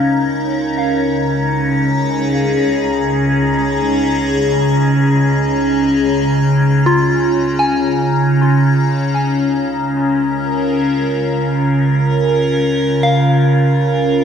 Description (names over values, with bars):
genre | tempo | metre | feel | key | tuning
ambient | free time | none | none | unclear | A4 = 440 Hz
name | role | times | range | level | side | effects
evolving wavetable pad | sustained chords | 0.0-14.2 s | Db3 to Bb5 | -13 LUFS | equal | phaser, built-in reverb
soft synth bell | arpeggios | 0.0-14.2 s | F4 to Ab5 | -21 LUFS | equal | chorus, phaser, analog delay
clear studio cello section | bass | 0.0-14.2 s | Db2 | -29 LUFS | left 1 dB | none
room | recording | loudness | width
wet spring reverb, RT60 2.3 s | echo-heavy mix | -13 LUFS | side -7 dB against mid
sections
0.0-14.2 A section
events
fade-out on cello section 0.0-14.2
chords
0.4 Eb5/Db